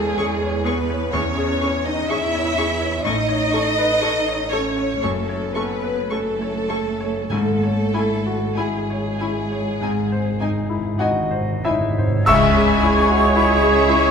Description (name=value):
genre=classical, romantic movement for piano and orchestra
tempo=43-63 BPM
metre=4/4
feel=rubato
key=C# minor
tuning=A4 = 439 Hz
part: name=clear grand piano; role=melody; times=0.0-14.1 s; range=C#2 to E6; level=-22 LUFS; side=left 3 dB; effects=none
part: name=rich symphonic violin section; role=second line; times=0.0-14.1 s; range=C#4 to E5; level=-24 LUFS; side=equal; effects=none
part: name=clear symphonic double bass section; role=bass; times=0.0-14.1 s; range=F#1 to E2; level=-28 LUFS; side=right 3 dB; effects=none
part: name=rich symphonic cello section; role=bass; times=0.0-14.1 s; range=C#2 to E4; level=-27 LUFS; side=right 2 dB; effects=none
part: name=warm symphonic violin section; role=melody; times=0.2-14.1 s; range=E5 to C#6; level=-30 LUFS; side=equal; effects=none
part: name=rich symphonic viola section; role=accompaniment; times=0.2-14.1 s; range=B#3 to E5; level=-26 LUFS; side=equal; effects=none
part: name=timpani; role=percussion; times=7.3-12.2 s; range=G#2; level=-26 LUFS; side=right 1 dB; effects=none
part: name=silver concert flute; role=second line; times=11.0-14.1 s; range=C#5 to C#6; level=-26 LUFS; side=left 2 dB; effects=none
part: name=mellow cor anglais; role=second line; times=12.3-14.1 s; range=C#5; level=-26 LUFS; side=right 6 dB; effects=none
part: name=warm clarinet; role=second line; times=12.3-14.1 s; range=G#4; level=-28 LUFS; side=right 4 dB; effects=none
part: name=mellow bassoon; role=accompaniment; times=12.3-14.1 s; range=G#3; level=-24 LUFS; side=right 5 dB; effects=none
part: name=mellow French horn section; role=sustained chords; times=12.3-14.1 s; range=G#3 to C#4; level=-26 LUFS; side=left 4 dB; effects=none
part: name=warm trumpet section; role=stabs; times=12.3-14.1 s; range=G#4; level=-24 LUFS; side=right 4 dB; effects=none
part: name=clash cymbals and concert bass drum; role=percussion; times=12.3-14.1 s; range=none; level=-28 LUFS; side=equal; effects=none
room=wet recital hall reverb, RT60 1.5 s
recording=minimal, uncompressed stereo recording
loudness=-17 LUFS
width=side -6 dB against mid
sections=0.0-12.3 A section; 12.3-14.1 A section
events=timpani fill 9.8-12.3; band accent 12.3-13.3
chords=0.0 C#m/E; 3.1 A; 5.0 F#m; 7.3 C#m/G#; 9.8 G#; 12.3 C#m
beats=0.18 1.13 2.11 | 3.06 4.02 5.02 6.11 | 7.31 8.57 9.81 10.99 | 12.27 13.34